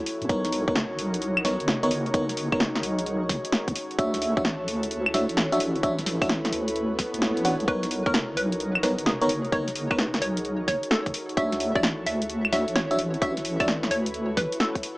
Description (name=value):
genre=UK garage, two-step garage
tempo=130 BPM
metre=4/4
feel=swing 66% on 16ths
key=B major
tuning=A4 = 440 Hz
part: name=airy breathy pad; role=sustained chords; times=0.0-15.0 s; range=D#4 to C#5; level=-34 LUFS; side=equal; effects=chorus, sidechain pumping
part: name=deep dark ambient pad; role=texture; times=0.0-15.0 s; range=D#4 to C#5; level=-34 LUFS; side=equal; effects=chorus, built-in reverb, sidechain pumping
part: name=punchy analog drum machine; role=drums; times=0.1-15.0 s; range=claves, hi-hat, snare drum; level=-27 LUFS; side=equal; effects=overdrive
part: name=deep soft wobble bass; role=bass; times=0.2-14.5 s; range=F#1 to F#2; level=-31 LUFS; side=equal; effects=chorus
part: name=FM electric piano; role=stabs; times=0.3-13.7 s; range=B3 to F#5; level=-27 LUFS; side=equal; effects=chorus, tape echo
part: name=electronic kick drum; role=drums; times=0.3-14.8 s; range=none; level=-28 LUFS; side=equal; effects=overdrive
part: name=swell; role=sound effects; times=6.9-7.7 s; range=none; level=-34 LUFS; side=equal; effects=none
part: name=hollow square pluck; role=melody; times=7.7-14.9 s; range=G#4 to E5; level=-30 LUFS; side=equal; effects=wide subtle chorus, digital delay
room=light reverb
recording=vinyl crackle, small speaker sound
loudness=-23 LUFS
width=side -22 dB against mid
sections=0.0-15.0 A section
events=swell 6.9-7.7; kick drops out 7.2-7.7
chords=0.3 Bmaj9; 3.8 Dmaj9; 7.7 Bmaj9; 11.1 Dmaj9